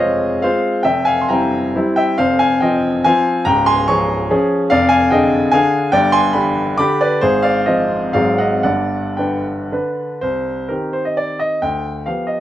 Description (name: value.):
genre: classical, romantic triple-time dance for piano with dotted rhythms.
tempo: 106-153 BPM.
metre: 3/4.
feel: rubato.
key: F minor, C minor from 4.7 s.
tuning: A4 = 440 Hz.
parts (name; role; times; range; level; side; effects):
warm baby grand piano; solo; 0.0-12.4 s; Db1 to D6; -14 LUFS; equal; none.
room: light reverb.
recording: worn, warbling old tape, cassette tape, warbly pitch drift.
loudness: -14 LUFS.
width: side -12 dB against mid.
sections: 0.0-10.2 A section; 10.2-12.4 B section.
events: none.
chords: 0.0 Fm; 0.8 C7/F; 2.2 Fm; 3.5 Db; 4.7 Ddim/F; 5.9 G; 7.2 Fm/Ab; 8.1 Ab7; 8.6 G; 10.2 Cm; 11.6 G7/D.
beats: 0.43 | 0.85 1.29 1.75 | 2.17 2.61 3.04 | 3.46 3.88 4.30 | 4.71 5.12 5.53 | 5.92 6.34 6.79 | 7.22 7.66 8.13 | 8.63 9.18 9.71 | 10.22 10.69 11.16 | 11.60 12.05.